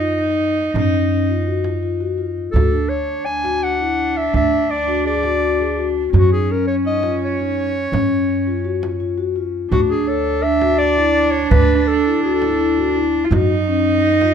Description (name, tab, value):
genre	contemporary instrumental, chamber music in an uneven meter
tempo	167 BPM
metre	5/4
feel	straight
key	unclear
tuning	A4 = 440 Hz
part	dark cello	second line	0.0-14.3 s	Db4 to F4	-22 LUFS	right 5 dB	none
part	vibraphone with soft mallets	arpeggios	0.0-14.3 s	Db4 to Db5	-20 LUFS	left 5 dB	none
part	upright bass	bass	0.0-14.3 s	D2 to Gb2	-22 LUFS	right 2 dB	none
part	frame drum	percussion	0.2-14.3 s	none	-24 LUFS	right 4 dB	none
part	clear clarinet	melody	2.5-13.1 s	Gb4 to Ab5	-20 LUFS	left 2 dB	none
room	light reverb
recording	none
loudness	-15 LUFS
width	side -8 dB against mid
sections	0.0-9.7 A section; 9.7-14.3 B section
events	none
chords	0.0 Gb5; 2.5 D; 6.1 Gb5; 9.7 Dadd9; 13.3 Gb5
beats	0.02 0.38 | 0.74 1.10 1.46 1.82 2.17 | 2.54 2.89 3.25 3.61 3.97 | 4.33 4.69 5.05 5.41 5.77 | 6.13 6.49 6.85 7.21 7.57 | 7.92 8.29 8.64 9.00 9.36 | 9.72 10.08 10.44 10.80 11.15 | 11.51 11.87 12.23 12.59 12.95 | 13.30 13.66 14.02